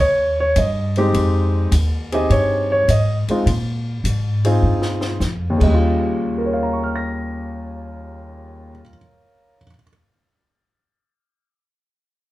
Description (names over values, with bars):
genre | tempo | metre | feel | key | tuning
jazz piano trio | 103 BPM | 4/4 | swing 69% on 8ths | Eb mixolydian | A4 = 440 Hz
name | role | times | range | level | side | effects
warm grand piano | melody | 0.0-9.9 s | Eb2 to Bb6 | -19 LUFS | equal | plate reverb
upright bass | bass | 0.0-8.8 s | Eb2 to Bb2 | -19 LUFS | equal | none
compact cocktail drum kit | drums | 0.6-5.7 s | crash cymbal, hi-hat, kick drum, ride cymbal, snare drum | -29 LUFS | left 1 dB | none
room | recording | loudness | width
moderate club reverb, RT60 0.6 s | heard from further back in the room | -16 LUFS | side -16 dB against mid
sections
0.0-5.8 A section; 5.8-8.1 B section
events
drum fill 4.6-5.2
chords
0.0 N.C.; 1.1 Fm9; 3.5 Bb7sus4; 5.5 Eb9